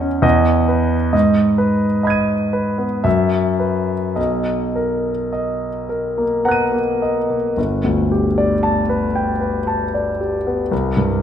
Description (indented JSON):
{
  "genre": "classical, impressionist solo piano",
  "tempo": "51-67 BPM",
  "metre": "3/4",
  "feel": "rubato",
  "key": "B major, G major from 7.6 s",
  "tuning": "A4 = 440 Hz",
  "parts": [
    { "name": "warm concert grand piano", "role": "solo", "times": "0.0-11.2 s", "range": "G1 to D#7", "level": "-16 LUFS", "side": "equal", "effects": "none" }
  ],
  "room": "moderate recital hall reverb, RT60 1.5 s",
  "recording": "minimal, uncompressed stereo recording",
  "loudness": "-16 LUFS",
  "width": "side -9 dB against mid",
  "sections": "0.0-7.6 A section; 7.6-11.2 B section",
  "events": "none",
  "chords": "0.2 B/E; 1.1 G#m; 3.0 F#7sus4; 4.2 Bmaj7; 7.6 Gadd9; 10.7 C5"
}